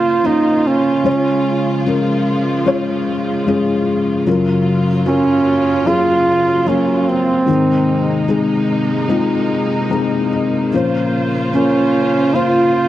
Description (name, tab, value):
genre	pop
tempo	74 BPM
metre	4/4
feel	straight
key	Bb minor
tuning	A4 = 438 Hz
part	breathy flugelhorn	melody	0.0-12.9 s	C4 to F4	-15 LUFS	right 3 dB	none
part	felt-muted upright piano	accompaniment	0.0-12.9 s	Gb2 to Bb5	-16 LUFS	left 3 dB	none
part	warm studio string section	sustained chords	0.0-12.9 s	C3 to C5	-22 LUFS	right 2 dB	none
room	small room ambience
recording	dry, close 1970s-style studio recording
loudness	-13 LUFS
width	side -13 dB against mid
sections	0.0-12.9 A section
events	felt piano fill 9.5-10.7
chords	0.0 Bbmadd9; 1.1 Db; 4.3 Gbmaj7; 7.5 Abadd9; 10.7 Bbmadd9